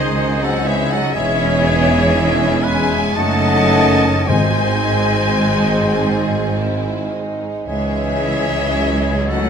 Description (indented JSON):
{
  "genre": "classical, slow romantic movement for symphony orchestra",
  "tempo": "51-62 BPM",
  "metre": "3/4",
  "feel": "rubato",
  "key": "C# minor",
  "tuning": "A4 = 440 Hz",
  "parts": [
    { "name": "warm symphonic violin section", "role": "melody", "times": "0.0-9.5 s", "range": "D#5 to A5", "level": "-23 LUFS", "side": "left 2 dB", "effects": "none" },
    { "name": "bright small flute group", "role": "second line", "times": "0.0-9.5 s", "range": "B#4 to F#5", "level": "-24 LUFS", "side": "left 1 dB", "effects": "none" },
    { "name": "clear oboe", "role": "second line", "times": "0.0-9.5 s", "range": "G#4 to D#5", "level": "-26 LUFS", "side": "right 1 dB", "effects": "none" },
    { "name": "mellow clarinet", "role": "second line", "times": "0.0-9.5 s", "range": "B#4 to D#5", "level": "-27 LUFS", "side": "left 4 dB", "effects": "none" },
    { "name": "rich symphonic violin section", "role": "second line", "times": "0.0-9.5 s", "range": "C#4 to A4", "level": "-28 LUFS", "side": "left 3 dB", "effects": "none" },
    { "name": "clear bassoon", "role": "accompaniment", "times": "0.0-9.5 s", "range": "F#3 to G#3", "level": "-27 LUFS", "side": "right 4 dB", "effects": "none" },
    { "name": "clear symphonic viola section", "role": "accompaniment", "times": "0.0-9.5 s", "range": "D#3 to D#4", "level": "-26 LUFS", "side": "equal", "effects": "none" },
    { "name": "mellow French horn section", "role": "sustained chords", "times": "0.0-9.5 s", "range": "D#3 to A3", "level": "-23 LUFS", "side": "left 5 dB", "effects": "none" },
    { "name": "warm trombone section", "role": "sustained chords", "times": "0.0-9.5 s", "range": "F#2 to D#4", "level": "-26 LUFS", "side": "right 4 dB", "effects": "none" },
    { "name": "dark tuba", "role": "bass", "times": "0.0-9.5 s", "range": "E1 to C#2", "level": "-24 LUFS", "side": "right 4 dB", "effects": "none" },
    { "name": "warm symphonic cello section", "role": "bass", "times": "0.0-9.5 s", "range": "C#2 to G#2", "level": "-22 LUFS", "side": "right 2 dB", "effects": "none" },
    { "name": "warm symphonic double bass section", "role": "bass", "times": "0.0-9.5 s", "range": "E1 to C#2", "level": "-25 LUFS", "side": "right 2 dB", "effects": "none" },
    { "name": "timpani", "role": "percussion", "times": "4.3-6.0 s", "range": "G#2", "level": "-22 LUFS", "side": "left 3 dB", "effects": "none" }
  ],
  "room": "moderate recital hall reverb, RT60 1.5 s",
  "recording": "none",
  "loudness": "-14 LUFS",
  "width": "side -7 dB against mid",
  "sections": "0.0-9.5 A section",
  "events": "none",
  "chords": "0.2 G#7/C#; 1.2 C#m/E; 3.2 D#dim/F#; 4.3 G#; 7.7 C#m"
}